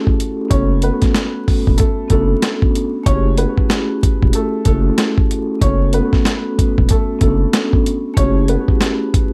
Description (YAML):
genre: hip hop, boom-bap hip-hop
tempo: 94 BPM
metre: 4/4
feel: swing 61% on 16ths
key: unclear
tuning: A4 = 439 Hz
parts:
  - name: dark upright piano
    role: melody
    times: 0.0-9.3 s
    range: A3 to C#5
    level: -26 LUFS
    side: equal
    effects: high-pass filter, low-pass filter, plate reverb, digital delay
  - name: vibraphone with soft mallets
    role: accompaniment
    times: 0.0-9.3 s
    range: A3 to A4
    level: -22 LUFS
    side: equal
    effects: cassette tape, high-pass filter, low-pass filter
  - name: dusty soul sampler-style drum kit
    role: drums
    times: 0.1-9.3 s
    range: hi-hat, kick drum, snare drum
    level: -18 LUFS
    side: equal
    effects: overdrive
  - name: saturated sub bass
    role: bass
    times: 0.5-8.6 s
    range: E1 to F#1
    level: -20 LUFS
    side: equal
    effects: none
room: light reverb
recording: vinyl crackle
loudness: -16 LUFS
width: mono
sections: 0.0-9.3 A section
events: none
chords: 0.0 F#m7; 0.5 Bm7; 3.1 F#m7; 5.6 Bm7; 8.2 F#m7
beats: | 0.51 1.15 1.79 2.42 | 3.06 3.70 4.34 4.98 | 5.62 6.25 6.89 7.53 | 8.17 8.81